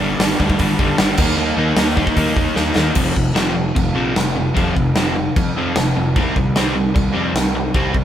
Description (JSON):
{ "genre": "punk rock", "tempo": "151 BPM", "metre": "4/4", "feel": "straight", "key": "unclear", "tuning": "A4 = 440 Hz", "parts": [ { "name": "crunchy overdriven guitar", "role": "riff", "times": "0.0-8.0 s", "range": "F2 to Eb4", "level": "-19 LUFS", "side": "equal", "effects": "none" }, { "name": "fuzz picked electric bass", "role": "bass", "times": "0.0-8.0 s", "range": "F1 to F2", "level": "-22 LUFS", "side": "equal", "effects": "overdrive" }, { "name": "big rock drum kit", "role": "drums", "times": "0.2-8.0 s", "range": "crash cymbal, hi-hat, kick drum, snare drum", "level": "-18 LUFS", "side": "equal", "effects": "none" } ], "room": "light reverb", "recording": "band playing live in one room", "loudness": "-15 LUFS", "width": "side -10 dB against mid", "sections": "0.0-3.0 A section; 3.0-8.0 B section", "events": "drum fill 2.6-3.0", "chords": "0.0 G5; 1.2 Eb5; 3.0 F5; 6.1 C5", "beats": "0.20 0.59 0.98 | 1.38 1.77 2.17 2.57 | 2.96 3.36 3.76 4.15 | 4.55 4.95 5.35 5.75 | 6.14 6.54 6.94 7.34 | 7.74" }